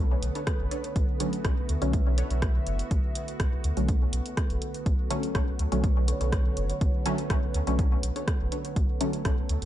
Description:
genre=dub techno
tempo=123 BPM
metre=4/4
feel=straight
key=B minor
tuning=A4 = 440 Hz
part: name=dark analog pad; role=sustained chords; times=0.0-9.7 s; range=D3 to E5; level=-37 LUFS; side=right 2 dB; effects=chorus, sidechain pumping
part: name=filtered dub chord stab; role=stabs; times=0.0-9.6 s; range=D3 to C#4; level=-32 LUFS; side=equal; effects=chorus, phaser, sidechain pumping, dub echo
part: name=warm sub bass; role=bass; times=0.0-9.7 s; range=F#1 to D2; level=-28 LUFS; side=equal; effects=sidechain pumping
part: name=bubbling stepped-filter texture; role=texture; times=0.0-9.7 s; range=F#3 to B4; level=-42 LUFS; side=equal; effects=chorus, built-in reverb, sidechain pumping
part: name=punchy analog drum machine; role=drums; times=0.2-9.7 s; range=hi-hat, rim click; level=-37 LUFS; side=right 1 dB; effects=none
part: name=filtered dub chord stab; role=riff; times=0.4-2.3, 6.1-8.6 s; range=D4 to C#5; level=-40 LUFS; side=equal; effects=phaser, cassette tape, sidechain pumping, dub echo
part: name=electronic kick drum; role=drums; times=0.5-9.4 s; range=none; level=-27 LUFS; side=equal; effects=overdrive
room=digital ambience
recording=nothing above 10.9 kHz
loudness=-25 LUFS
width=side -12 dB against mid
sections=0.0-9.7 A section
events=filter sweep on synth stab 0.0-9.7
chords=0.0 Bm9

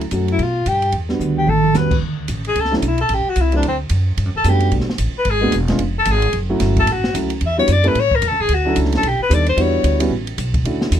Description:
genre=jazz, small-group swing and bop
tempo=222 BPM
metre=4/4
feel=swing 60% on 8ths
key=D major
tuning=A4 = 441 Hz
part: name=upright bass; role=bass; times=0.0-11.0 s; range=E1 to B2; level=-19 LUFS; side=equal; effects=none
part: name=open jazz drum kit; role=drums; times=0.0-11.0 s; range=crash cymbal, hi-hat, kick drum, ride cymbal, snare drum, toms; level=-23 LUFS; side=right 2 dB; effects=none
part: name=warm upright piano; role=accompaniment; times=0.1-11.0 s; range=F#3 to A4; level=-21 LUFS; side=right 2 dB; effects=none
part: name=breathy alto saxophone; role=melody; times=0.3-10.0 s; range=C4 to E5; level=-18 LUFS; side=left 3 dB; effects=none
room=little or no reverb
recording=close, detailed microphones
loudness=-15 LUFS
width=side -10 dB against mid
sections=0.0-2.0 A section; 2.0-10.6 B section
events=drum fill 1.2-1.7; alto saxophone solo 2.0-10.6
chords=0.4 G7; 0.9 Em7; 1.5 A13; 2.0 Dmaj7(no3); 3.1 Am; 3.6 D; 4.2 Gmaj9; 5.3 G#m7b5; 5.8 Fm; 6.3 F#m7; 7.4 Em9; 8.0 A; 8.5 Dmaj7; 9.0 B7alt; 9.6 Em7; 10.1 Asus2

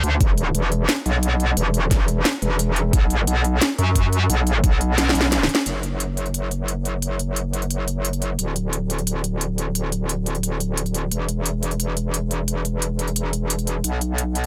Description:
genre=dark technical drum and bass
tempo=176 BPM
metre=4/4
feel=straight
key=unclear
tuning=A4 = 440 Hz
part: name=metallic wobble bass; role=bass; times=0.0-14.5 s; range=D1 to F#2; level=-23 LUFS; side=equal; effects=chorus, overdrive, sidechain pumping
part: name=drum and bass drum kit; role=drums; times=0.0-14.5 s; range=hi-hat, snare drum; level=-26 LUFS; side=equal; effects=none
part: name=electronic kick drum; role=drums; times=0.2-4.7 s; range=none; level=-21 LUFS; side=equal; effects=none
room=little or no reverb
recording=none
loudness=-22 LUFS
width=mono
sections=0.0-5.7 A section; 5.7-14.5 B section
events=drum fill 5.0-5.7; band accent 5.5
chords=none

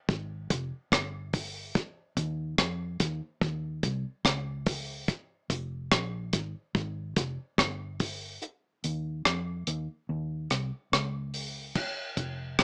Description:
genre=roots reggae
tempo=72 BPM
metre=4/4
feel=straight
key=unclear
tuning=A4 = 440 Hz
part: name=vintage muted fingered electric bass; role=bass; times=0.1-12.6 s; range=F1 to F2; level=-37 LUFS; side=equal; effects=none
part: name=deep reggae drum kit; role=drums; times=0.1-12.6 s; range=crash cymbal, hi-hat, kick drum, rim click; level=-30 LUFS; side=equal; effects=none
room=moderate small room reverb, RT60 0.6 s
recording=rough home demo mix, small speaker sound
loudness=-32 LUFS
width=mono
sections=0.0-11.8 A section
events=kick muted 8.4-11.8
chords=none

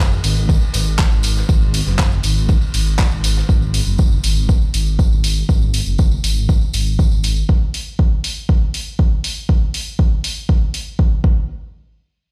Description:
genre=melodic techno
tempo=120 BPM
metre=4/4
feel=straight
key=unclear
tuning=A4 = 440 Hz
part: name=swelling detuned saw bass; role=bass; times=0.0-7.4 s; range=F#1 to G#1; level=-20 LUFS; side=equal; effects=sidechain pumping
part: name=tambourine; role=percussion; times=0.1-7.5 s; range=none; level=-32 LUFS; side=equal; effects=none
part: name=deep house drum kit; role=drums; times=0.2-10.8 s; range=handclaps, hi-hat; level=-26 LUFS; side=equal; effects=none
part: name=open jazz drum kit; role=drums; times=0.2-3.5 s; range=ride cymbal, snare drum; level=-38 LUFS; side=equal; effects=high-pass filter on cymbals, high-pass filter on snare, high-pass filter on room
part: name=electronic kick drum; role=drums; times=0.5-11.3 s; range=none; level=-17 LUFS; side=equal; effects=none
room=small room ambience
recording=played on a big sound system in a bare room, stone room reverb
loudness=-17 LUFS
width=mono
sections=0.0-11.5 A section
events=none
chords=none

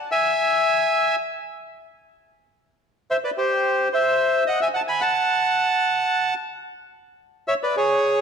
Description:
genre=tango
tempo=110 BPM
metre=4/4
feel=rubato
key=unclear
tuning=A4 = 439 Hz
part: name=bandoneon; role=solo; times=0.1-8.2 s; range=G4 to B5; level=-19 LUFS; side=equal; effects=none
room=moderate concert hall reverb, RT60 2.1 s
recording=none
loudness=-19 LUFS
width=side -6 dB against mid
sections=0.0-8.2 A section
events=none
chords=0.1 N.C.; 2.3 C; 4.5 D#dim (rootless); 6.7 E (rootless)

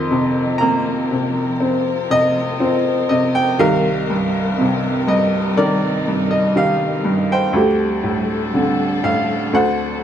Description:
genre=acoustic folk-pop ballad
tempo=60 BPM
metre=4/4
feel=straight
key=unclear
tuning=A4 = 435 Hz
part: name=bright upright piano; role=melody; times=0.0-10.0 s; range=C2 to C6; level=-17 LUFS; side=equal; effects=slapback echo
part: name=warm symphonic string section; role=sustained chords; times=0.0-10.0 s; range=F3 to Bb4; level=-25 LUFS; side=left 1 dB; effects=none
part: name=felt-muted upright piano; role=arpeggios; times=0.0-10.0 s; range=Eb3 to G4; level=-23 LUFS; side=right 2 dB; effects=none
room=light reverb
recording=none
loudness=-15 LUFS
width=side -9 dB against mid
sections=0.0-10.0 A section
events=none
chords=0.0 F7sus4; 3.6 Cm7; 7.6 D7sus4

